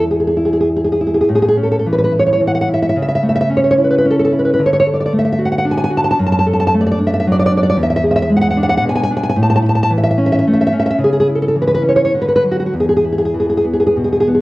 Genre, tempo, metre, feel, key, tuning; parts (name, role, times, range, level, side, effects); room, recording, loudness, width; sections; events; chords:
romantic piece for solo classical guitar; 92-116 BPM; 3/4; rubato; A major; A4 = 440 Hz
nylon-string guitar; solo; 0.0-14.4 s; E2 to A5; -12 LUFS; equal
moderate recital hall reverb, RT60 1.5 s; worn, warbling old tape, cassette tape, warbly pitch drift; -12 LUFS; side -19 dB against mid
0.0-1.3 A section; 1.3-14.4 B section
0.0 N.C.; 1.3 A; 3.0 A/C#; 4.6 D; 6.2 D/F#; 7.8 E7; 9.4 A; 11.0 C#m7; 12.1 D6; 12.7 E5